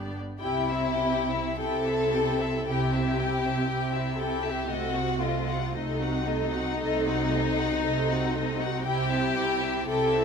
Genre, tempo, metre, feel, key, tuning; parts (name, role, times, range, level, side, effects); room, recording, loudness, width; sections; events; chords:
classical, slow romantic movement for string orchestra; 49-60 BPM; 4/4; rubato; C major; A4 = 440 Hz
warm chamber violin section; second line; 0.0-10.2 s; Eb4 to D5; -29 LUFS; left 3 dB
rich symphonic viola section; accompaniment; 0.0-10.2 s; A3 to A4; -33 LUFS; right 3 dB
rich chamber double bass section; bass; 0.0-10.2 s; G1 to C2; -34 LUFS; right 4 dB
warm chamber cello section; bass; 0.0-10.2 s; G2 to C3; -32 LUFS; right 2 dB
rich chamber violin section; melody; 0.4-10.2 s; Eb5 to G5; -34 LUFS; left 8 dB
moderate scoring stage reverb, RT60 1.8 s; -25 LUFS; side -6 dB against mid
0.4-10.2 A section
0.4 C; 4.7 Cdim7; 8.8 C